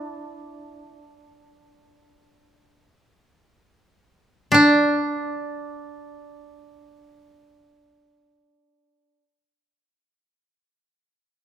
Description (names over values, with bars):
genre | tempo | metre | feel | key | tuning
japanese traditional, Japanese chamber music | free time | none | none | unclear | A4 = 440 Hz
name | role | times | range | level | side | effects
koto | melody | 0.0-9.2 s | D4 to E4 | -20 LUFS | left 1 dB | none
koto | second line | 0.0-9.2 s | D4 to E4 | -20 LUFS | right 1 dB | none
room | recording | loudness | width
light reverb | close, detailed microphones | -17 LUFS | side -10 dB against mid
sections
0.0-4.5 A section; 4.5-10.9 B section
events
slowing down 0.0-4.5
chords
none